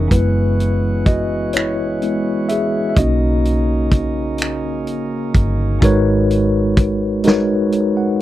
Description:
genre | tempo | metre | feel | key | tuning
slow six-eight R&B | 42 BPM (dotted quarters) | 6/8 | straight | G# minor | A4 = 440 Hz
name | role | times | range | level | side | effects
mellow tine electric piano | accompaniment | 0.0-8.2 s | E3 to F#5 | -17 LUFS | left 1 dB | medium stereo tremolo
chamber organ, sparkling flutes | sustained chords | 0.0-5.8 s | C#3 to F#4 | -26 LUFS | right 5 dB | none
vintage muted fingered electric bass | bass | 0.0-8.2 s | F#1 to B1 | -19 LUFS | equal | none
warm soul drum kit | drums | 0.1-7.9 s | finger snaps, hi-hat, kick drum, snare drum | -16 LUFS | equal | none
room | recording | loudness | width
little or no reverb | dry, close 1970s-style studio recording | -14 LUFS | side -14 dB against mid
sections
0.0-5.8 A section; 5.8-8.2 B section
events
tine electric piano solo 0.0-5.8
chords
0.1 F#9sus4; 3.0 Bmaj9; 5.8 G#m11

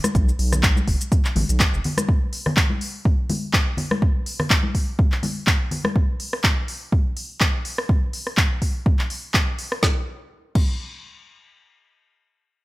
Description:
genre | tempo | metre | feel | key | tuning
deep house | 124 BPM | 4/4 | swing 55% on 16ths | unclear | A4 = 440 Hz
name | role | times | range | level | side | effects
deep house drum kit | drums | 0.0-10.7 s | crash cymbal, handclaps, hi-hat, rim click, shaker, snare drum | -24 LUFS | equal | studio reverb
congas | percussion | 0.0-5.9 s | none | -27 LUFS | left 2 dB | sidechain pumping on perc
round analog bass | bass | 0.1-1.8 s | F#1 to B1 | -21 LUFS | equal | sidechain pumping
electronic kick drum | drums | 0.1-10.7 s | none | -20 LUFS | equal | studio reverb
room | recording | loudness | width
little or no reverb | none | -19 LUFS | side -19 dB against mid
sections
0.0-9.8 A section; 9.8-12.6 B section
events
none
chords
none

